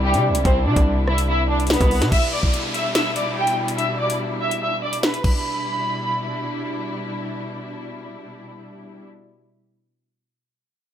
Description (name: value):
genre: hip hop, drill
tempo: 144 BPM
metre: 4/4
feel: half-time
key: E minor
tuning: A4 = 443 Hz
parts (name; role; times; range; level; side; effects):
- clear studio violin section; melody; 0.0-6.7 s; G3 to E6; -23 LUFS; equal; low-pass filter, digital delay
- dark symphonic string section; sustained chords; 0.0-9.0 s; B2 to E4; -28 LUFS; left 1 dB; none
- distorted 808-style bass; bass; 0.0-2.1 s; C2 to C3; -20 LUFS; equal; distortion
- drill drum kit; drums; 0.1-5.3 s; crash cymbal, hi-hat, kick drum, rim click, snare drum; -21 LUFS; equal; none
- downlifter; sound effects; 2.1-5.5 s; none; -30 LUFS; equal; none
room: light reverb, digital ambience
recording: none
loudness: -19 LUFS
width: side -10 dB against mid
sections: 0.0-2.1 A section; 2.1-5.5 B section; 5.5-8.8 C section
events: kick muted 3.8-5.5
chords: 0.0 Cadd9; 2.1 Em7